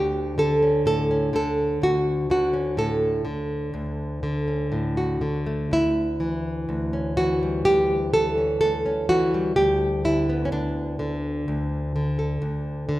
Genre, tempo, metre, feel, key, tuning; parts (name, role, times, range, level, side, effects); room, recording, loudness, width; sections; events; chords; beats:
folk, solo fingerstyle acoustic guitar; 63 BPM; 4/4; rubato; D major; A4 = 440 Hz
nylon-string guitar; solo; 0.0-13.0 s; D2 to A4; -21 LUFS; equal
wet recital hall reverb, RT60 1.7 s; recorded in a church or concert hall; -21 LUFS; side -16 dB against mid
0.0-13.0 A section
0.0 Dmaj7; 5.7 Dmaj9; 9.6 Gadd9/D
0.87 | 1.82 2.78 3.74 4.73 | 5.72 6.69 7.66 8.62 | 9.57 10.53 11.48 12.42